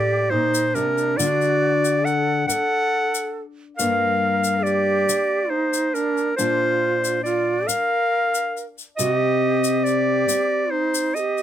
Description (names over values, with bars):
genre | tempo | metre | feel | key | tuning
acoustic folk duo or small band | 46 BPM (dotted quarters) | 6/8 | straight | G minor | A4 = 440 Hz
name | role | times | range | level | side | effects
clear clarinet | melody | 0.0-11.4 s | Bb4 to F#5 | -21 LUFS | equal | none
breathy shakuhachi | second line | 0.0-11.4 s | D4 to Bb4 | -25 LUFS | right 3 dB | none
fingerpicked steel-string acoustic guitar | accompaniment | 0.0-11.4 s | G2 to D4 | -26 LUFS | left 4 dB | none
tube shaker | percussion | 0.5-11.4 s | none | -28 LUFS | left 6 dB | none
room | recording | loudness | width
light reverb | close, detailed microphones | -18 LUFS | side -10 dB against mid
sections
0.0-11.4 A section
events
none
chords
0.0 Gmadd9; 1.2 D; 3.8 Gm; 6.4 Bb; 9.0 Cm